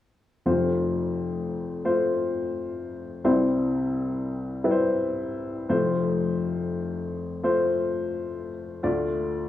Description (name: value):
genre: pop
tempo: 86 BPM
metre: 4/4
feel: swing 56% on 16ths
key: F major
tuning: A4 = 440 Hz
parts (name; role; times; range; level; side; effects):
- dark baby grand piano; accompaniment; 0.5-9.5 s; F1 to D5; -24 LUFS; left 2 dB; none
room: moderate large studio reverb, RT60 1.2 s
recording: worn, warbling old tape, cassette tape, warbly pitch drift, small room ambience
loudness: -24 LUFS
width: side -12 dB against mid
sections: 0.4-9.5 A section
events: none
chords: 0.4 F; 3.2 C; 5.7 F; 8.8 Dm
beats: | 0.45 1.15 1.85 2.55 | 3.25 3.94 4.64 5.34 | 6.04 6.74 7.44 8.14 | 8.84